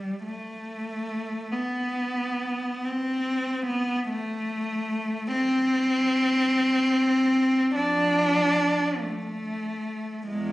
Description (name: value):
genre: classical, free, expressive piece for unaccompanied cello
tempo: 45-50 BPM (dotted quarters)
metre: 6/8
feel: rubato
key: unclear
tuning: A4 = 440 Hz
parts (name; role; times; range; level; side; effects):
- warm cello; solo; 0.0-10.5 s; E2 to D4; -23 LUFS; equal; none
room: moderate recital hall reverb, RT60 1.7 s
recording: recorded on a phone in the room, club reverb, compression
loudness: -23 LUFS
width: side -17 dB against mid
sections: 0.0-10.5 A section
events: none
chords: none